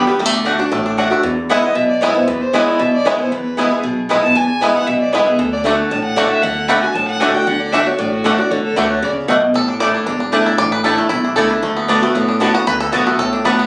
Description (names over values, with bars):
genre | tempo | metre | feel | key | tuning
bluegrass | 231 BPM | 4/4 | straight | D lydian | A4 = 440 Hz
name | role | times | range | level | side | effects
bluegrass banjo | melody | 0.0-13.7 s | G3 to D5 | -22 LUFS | equal | plate reverb
dark fiddle | melody | 0.0-9.1 s | F#4 to B5 | -22 LUFS | equal | plate reverb
picked swing-style acoustic guitar | accompaniment | 0.0-13.7 s | E2 to G4 | -19 LUFS | equal | none
mandolin | stabs | 0.0-13.5 s | A3 to A5 | -22 LUFS | equal | none
upright bass | bass | 0.0-13.7 s | E1 to E2 | -31 LUFS | equal | none
room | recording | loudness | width
moderate studio reverb, RT60 0.7 s | recorded on a phone in the room, club reverb, compression | -16 LUFS | mono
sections
0.0-1.2 A section; 1.2-9.5 B section; 9.5-13.7 C section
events
five-string banjo solo 9.5-13.7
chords
0.2 D; 1.2 E; 5.4 D; 9.5 Asus4; 11.6 D6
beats
| 0.20 0.46 0.72 0.98 | 1.24 1.50 1.76 2.02 | 2.28 2.54 2.80 3.06 | 3.32 3.58 3.84 4.10 | 4.36 4.62 4.88 5.13 | 5.39 5.65 5.91 6.17 | 6.43 6.69 6.95 7.21 | 7.47 7.73 7.99 8.25 | 8.51 8.77 9.03 9.29 | 9.55 9.81 10.07 10.33 | 10.59 10.85 11.11 11.37 | 11.63 11.89 12.15 12.41 | 12.67 12.93 13.19 13.45